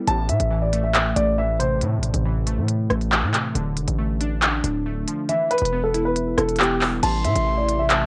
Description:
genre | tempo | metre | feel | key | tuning
hip hop, drill | 138 BPM | 4/4 | half-time | A minor | A4 = 440 Hz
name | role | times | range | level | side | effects
glassy digital keys | accompaniment | 0.0-7.0 s | A2 to E4 | -28 LUFS | equal | chorus, cassette tape
dark baby grand piano | melody | 0.1-1.8, 5.3-8.1 s | G4 to A5 | -26 LUFS | equal | tape echo
hard-hitting 808-style bass | bass | 0.1-8.1 s | D1 to A2 | -26 LUFS | equal | none
drill drum kit | drums | 0.1-8.0 s | crash cymbal, handclaps, hi-hat, rim click | -25 LUFS | equal | vintage 12-bit sampler grit, cassette tape
breathy silver concert flute | second line | 7.0-8.1 s | A5 to C6 | -29 LUFS | equal | cassette tape, tape echo
airy breathy pad | sustained chords | 7.0-8.1 s | C3 to E4 | -31 LUFS | equal | chorus, cassette tape
room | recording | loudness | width
light reverb | home recording on cassette | -22 LUFS | mono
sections
0.0-7.0 A section; 7.0-8.1 B section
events
break 1.8-5.3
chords
0.1 Am; 3.6 Dm; 5.3 Em; 7.0 Am

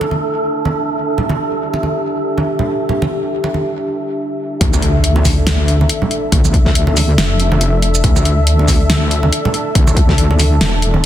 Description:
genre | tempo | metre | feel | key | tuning
deep dubstep | 140 BPM | 4/4 | swing 57% on 16ths, half-time | unclear | A4 = 440 Hz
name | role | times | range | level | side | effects
dark analog pad | sustained chords | 0.0-11.1 s | D4 to E5 | -20 LUFS | left 1 dB | chorus
congas | percussion | 0.0-11.0 s | none | -21 LUFS | right 2 dB | dub echo
wind-like tuned noise texture | texture | 0.0-3.8 s | A4 | -22 LUFS | right 4 dB | built-in reverb
wobble bass | bass | 4.6-11.0 s | E1 to D2 | -14 LUFS | equal | chorus
deep house drum kit | drums | 4.6-10.9 s | hi-hat, shaker, snare drum | -18 LUFS | equal | low-pass filter on hats, low-pass filter on perc, soft clipping on snare, low-pass filter on snare, low-pass filter on room
electronic kick drum | drums | 4.6-10.2 s | none | -14 LUFS | equal | none
impact | sound effects | 4.6-6.3 s | none | -22 LUFS | equal | none
room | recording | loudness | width
light reverb | dense, heavily limited modern master | -12 LUFS | side -11 dB against mid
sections
0.0-4.6 A section; 4.6-11.1 B section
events
break 3.8-4.6; drop 4.6-11.1; impact 4.6-6.3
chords
0.0 D5

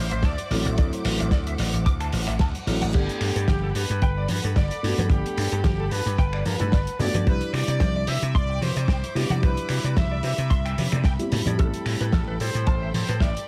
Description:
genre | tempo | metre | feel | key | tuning
nu-disco, nu disco | 111 BPM | 4/4 | swing 54% on 16ths | unclear | A4 = 443 Hz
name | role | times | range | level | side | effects
clear trumpet section | melody | 0.0-13.5 s | G4 to E5 | -34 LUFS | equal | tape echo
dark baby grand piano | accompaniment | 0.0-13.5 s | F#3 to F#4 | -35 LUFS | equal | sidechain pumping
warm studio string section | sustained chords | 0.0-13.5 s | A4 to D6 | -41 LUFS | equal | sidechain pumping
vintage slap bass | bass | 0.0-13.3 s | G1 to C3 | -28 LUFS | equal | none
direct-recorded clean electric guitar | riff | 0.1-13.3 s | G4 to D6 | -38 LUFS | equal | ensemble chorus
warm soul drum kit | drums | 0.1-13.5 s | crash cymbal, finger snaps, hi-hat, snare drum | -33 LUFS | equal | none
kick drum | drums | 0.2-13.3 s | none | -25 LUFS | equal | none
reverse cymbal | sound effects | 2.5-2.9 s | none | -42 LUFS | equal | none
congas | percussion | 3.5-13.1 s | none | -33 LUFS | equal | none
room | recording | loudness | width
studio ambience | none | -24 LUFS | mono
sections
0.0-13.5 A section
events
reverse cymbal 2.5-2.9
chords
0.0 D9; 2.9 Gmaj9; 7.3 Cmaj9; 11.3 Am9

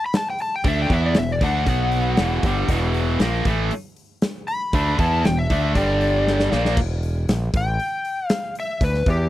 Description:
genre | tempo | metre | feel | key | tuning
blues rock power trio and southern rock | 118 BPM | 4/4 | straight | E minor | A4 = 440 Hz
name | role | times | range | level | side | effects
overdriven slide guitar | melody | 0.0-9.3 s | G4 to B5 | -24 LUFS | left 2 dB | none
big rock drum kit | drums | 0.1-9.2 s | crash cymbal, hi-hat, kick drum, snare drum | -24 LUFS | equal | none
growling fingered electric bass | bass | 0.6-9.3 s | E1 to E2 | -22 LUFS | equal | overdrive
tight distorted guitar | riff | 0.7-6.8 s | E2 to E4 | -22 LUFS | right 1 dB | distortion
room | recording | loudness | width
little or no reverb | dry, close 1970s-style studio recording | -18 LUFS | side -14 dB against mid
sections
0.0-6.8 A section; 6.8-9.3 B section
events
drum fill 6.3-6.8; electric slide guitar solo 6.8-9.3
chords
0.0 E5; 1.7 B5; 2.2 Em; 5.8 G5; 6.5 A#; 6.8 Em

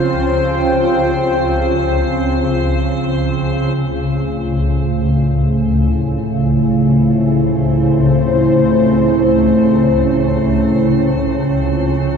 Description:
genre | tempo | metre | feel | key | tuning
ambient | free time | none | none | unclear | A4 = 440 Hz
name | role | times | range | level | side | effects
dark analog pad | sustained chords | 0.0-12.2 s | A3 to G5 | -16 LUFS | equal | chorus
swarming drone | drone | 0.0-12.2 s | C#2 to C#3 | -16 LUFS | equal | built-in reverb
icy glass pad | texture | 0.0-12.2 s | B#3 to B#4 | -25 LUFS | equal | chorus, built-in reverb
room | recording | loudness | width
wet huge ambient reverb, RT60 8.4 s | dark, warm production | -12 LUFS | side -6 dB against mid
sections
0.0-3.8 A section; 3.8-12.2 B section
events
filter sweep on synth drone 0.0-3.8; fade-in on ambient pad 3.8-12.2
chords
0.0 F5; 3.8 Am; 11.1 F5

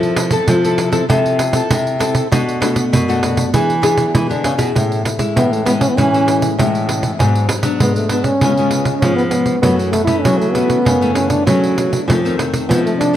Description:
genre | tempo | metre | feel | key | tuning
samba and choro | 98 BPM | 4/4 | straight | A major | A4 = 439 Hz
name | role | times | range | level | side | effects
nylon-string guitar | accompaniment | 0.0-13.2 s | F2 to A4 | -19 LUFS | left 3 dB | wide subtle chorus
nylon-string guitar | bass | 0.0-13.2 s | G#2 to G#3 | -18 LUFS | equal | none
pandeiro | percussion | 0.0-13.2 s | none | -19 LUFS | right 2 dB | none
breathy trombone | melody | 5.4-13.2 s | A3 to E4 | -17 LUFS | equal | analog delay
room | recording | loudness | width
moderate plate reverb, RT60 3.2 s | dreamy mix soaked in reverb | -13 LUFS | side -11 dB against mid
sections
0.0-4.8 A section; 4.8-13.2 B section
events
none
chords
0.0 Fmaj7; 2.3 Bm7; 3.5 E7; 4.8 Amaj7; 7.2 G#m7b5; 8.4 C#7; 9.6 F#m7; 12.1 F7

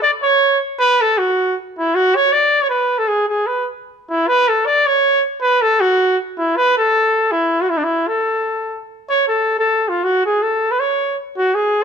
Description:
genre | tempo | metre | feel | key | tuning
mexican folk | 156 BPM | 3/4 | swing 55% on 8ths, rubato | unclear | A4 = 442 Hz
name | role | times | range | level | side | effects
mellow trumpet | solo | 0.0-11.8 s | D4 to D5 | -14 LUFS | equal | none
room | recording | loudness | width
light reverb | close, detailed microphones | -14 LUFS | side -7 dB against mid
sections
0.0-9.2 A section; 9.2-11.8 B section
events
none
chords
none

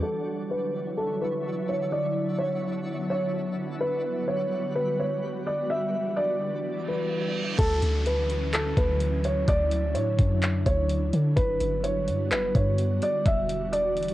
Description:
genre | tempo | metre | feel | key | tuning
hip hop, atmospheric cloud-rap | 127 BPM | 4/4 | half-time | D major | A4 = 439 Hz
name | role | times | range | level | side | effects
felt-muted upright piano | melody | 0.0-14.1 s | A4 to E5 | -28 LUFS | equal | low-pass filter, cassette tape, tape echo
ethereal airy pad | sustained chords | 0.0-14.1 s | D3 to C#5 | -31 LUFS | equal | ensemble chorus, built-in reverb, sidechain pumping, low-pass filter, cassette tape
twinkling granular texture | texture | 0.0-7.6 s | G3 to C#6 | -40 LUFS | left 1 dB | built-in reverb, cassette tape
reverse cymbal and downlifter | sound effects | 6.8-11.4 s | none | -38 LUFS | right 2 dB | none
soft 808-style bass | bass | 7.6-14.1 s | E1 to D3 | -27 LUFS | equal | none
smooth R&B drum kit | drums | 7.6-14.1 s | crash cymbal, handclaps, hi-hat, kick drum | -27 LUFS | equal | cassette tape
room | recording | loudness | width
light reverb | home recording on cassette | -24 LUFS | side -15 dB against mid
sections
0.0-7.6 A section; 7.6-14.1 B section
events
filter sweep 0.0-7.6; reverse cymbal 6.8-7.6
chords
0.0 Dmaj9; 3.8 Gmaj7; 5.7 Em9; 7.6 Dmaj9; 11.4 Gmaj7; 13.3 Em9

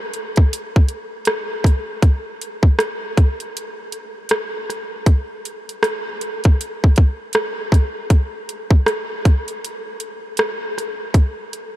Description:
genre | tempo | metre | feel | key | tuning
hip hop | 79 BPM | 4/4 | swing 63% on 16ths | none | none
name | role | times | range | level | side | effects
drum and bass drum kit | drums | 0.1-11.7 s | hi-hat, kick drum, rim click | -17 LUFS | equal | overdrive
room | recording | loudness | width
light reverb | none | -16 LUFS | side -14 dB against mid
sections
0.0-8.1 A section; 8.1-11.8 A section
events
none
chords
none

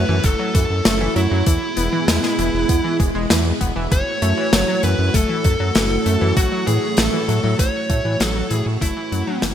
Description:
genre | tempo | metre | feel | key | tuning
synthwave | 98 BPM | 4/4 | straight | F# minor | A4 = 441 Hz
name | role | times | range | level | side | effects
fuzz lead guitar | melody | 0.0-9.4 s | E4 to C#5 | -22 LUFS | equal | distortion, digital delay
string machine, full ensemble | sustained chords | 0.0-9.5 s | G#3 to C#5 | -24 LUFS | right 1 dB | ensemble chorus, sidechain pumping
analog pluck | arpeggios | 0.0-9.5 s | E3 to B3 | -26 LUFS | left 2 dB | chorus, digital delay
round analog bass | bass | 0.0-9.5 s | E1 to A2 | -21 LUFS | equal | sidechain pumping
electronic kick drum | drums | 0.2-8.9 s | none | -19 LUFS | equal | none
modern studio drum kit | drums | 0.2-9.5 s | hi-hat, snare drum | -21 LUFS | left 1 dB | gated reverb
room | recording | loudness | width
moderate lush hall reverb, RT60 1.9 s, small room reverb | bright 1980s-style digital production | -16 LUFS | side -10 dB against mid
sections
0.0-9.5 A section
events
fade-out 7.2-9.5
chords
0.0 F#m7; 1.5 E; 3.9 F#m7; 6.4 A6; 8.8 F#m7

